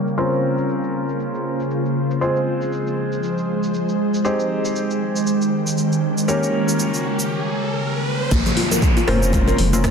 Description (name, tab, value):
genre	afro house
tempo	118 BPM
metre	4/4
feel	swing 58% on 16ths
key	unclear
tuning	A4 = 439 Hz
part	ethereal airy pad	sustained chords	0.0-9.9 s	Db3 to G5	-22 LUFS	right 1 dB	ensemble chorus, built-in reverb, sidechain pumping
part	felt-muted upright piano	stabs	0.0-9.9 s	Ab3 to Db5	-24 LUFS	left 1 dB	sidechain pumping, ping-pong delay
part	afro-pop drum kit	drums	0.1-9.9 s	cabasa, crash cymbal, hi-hat, rim click, toms	-27 LUFS	equal	studio reverb
part	riser and downlifter	sound effects	5.7-9.9 s	none	-27 LUFS	right 1 dB	none
part	kalimba	arpeggios	8.3-9.9 s	Ab3 to Bb4	-22 LUFS	left 3 dB	sidechain pumping, ping-pong delay
part	round analog bass	bass	8.3-9.9 s	F1 to Bb1	-20 LUFS	equal	sidechain pumping
part	electronic kick drum	drums	8.3-9.9 s	none	-19 LUFS	equal	studio reverb
part	congas	percussion	8.3-9.9 s	none	-25 LUFS	left 2 dB	none
room	moderate recital hall reverb, RT60 1.8 s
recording	low-pass filter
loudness	-18 LUFS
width	side -6 dB against mid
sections	0.0-8.3 A section; 8.3-9.9 B section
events	filter sweep on felt piano 0.0-8.3; filter sweep 0.0-8.3; riser 5.7-8.3; break 7.3-8.3; drop 8.3-9.9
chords	0.2 Bbmadd9; 2.2 Fm; 4.2 Abmaj7; 6.3 Gdim; 8.3 Bbmadd9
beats	| 0.18 0.69 1.20 1.70 | 2.21 2.72 3.23 3.74 | 4.25 4.75 5.26 5.77 | 6.28 6.79 7.30 7.81 | 8.31 8.82 9.33 9.84